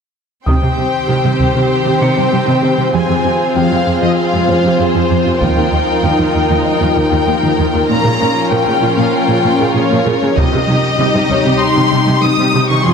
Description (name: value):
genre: cinematic, hybrid orchestral and electronic film score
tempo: 97 BPM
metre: 4/4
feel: straight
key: unclear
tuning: A4 = 439 Hz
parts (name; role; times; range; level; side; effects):
- warm symphonic violin section; melody; 0.5-12.9 s; C5 to Eb6; -18 LUFS; left 4 dB; none
- warm symphonic violin section; second line; 0.5-12.9 s; Eb4 to C5; -20 LUFS; left 2 dB; none
- warm symphonic viola section; accompaniment; 0.5-12.9 s; C3 to Eb4; -21 LUFS; right 2 dB; none
- airy breathy pad; sustained chords; 0.7-12.9 s; C3 to C5; -17 LUFS; left 1 dB; chorus
- tight sequenced synth; arpeggios; 0.5-12.9 s; C3 to Bb4; -22 LUFS; left 1 dB; chorus, phaser
- dark symphonic cello section; bass; 0.5-12.9 s; Eb2 to C3; -17 LUFS; right 3 dB; none
- taiko ensemble; drums; 0.5-1.7, 5.4-6.6, 10.4-11.6 s; none; -20 LUFS; equal; none
- felt-muted upright piano; texture; 0.5-12.9 s; C4 to Db7; -26 LUFS; equal; none
room: wet scoring stage reverb, RT60 1.6 s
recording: none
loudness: -11 LUFS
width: side -6 dB against mid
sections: 0.5-12.9 A section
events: none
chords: 0.5 Cm; 2.9 Fm; 5.4 Ebadd9; 7.9 Bbm; 10.4 Cm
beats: | 0.47 1.09 1.71 2.33 | 2.95 3.56 4.18 4.80 | 5.42 6.04 6.66 7.28 | 7.89 8.51 9.13 9.75 | 10.37 10.99 11.61 12.22 | 12.84